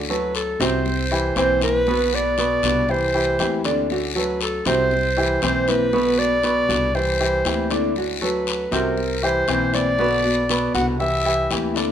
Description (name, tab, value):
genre	latin, Cuban son and guajira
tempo	118 BPM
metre	4/4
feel	straight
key	unclear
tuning	A4 = 437 Hz
part	nylon-string guitar	accompaniment	0.0-11.9 s	B2 to F#4	-27 LUFS	left 3 dB	none
part	upright bass	bass	0.0-11.9 s	B1 to D2	-28 LUFS	equal	none
part	clear clarinet	melody	0.1-11.7 s	A4 to F#5	-21 LUFS	equal	plate reverb
part	warm baby grand piano	arpeggios	0.1-11.9 s	B2 to D5	-23 LUFS	right 1 dB	tape echo
part	guiro	percussion	0.3-11.9 s	none	-29 LUFS	left 7 dB	none
room	moderate studio reverb, RT60 0.9 s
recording	none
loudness	-18 LUFS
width	side -9 dB against mid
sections	0.0-11.9 A section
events	none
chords	0.0 Dmaj7; 0.9 C7; 1.9 Bm7; 2.9 C7; 3.9 Dmaj7; 4.9 C7; 5.9 Bm7; 6.9 C7; 8.0 Dmaj7; 9.0 C7; 10.0 Bm7; 11.0 C7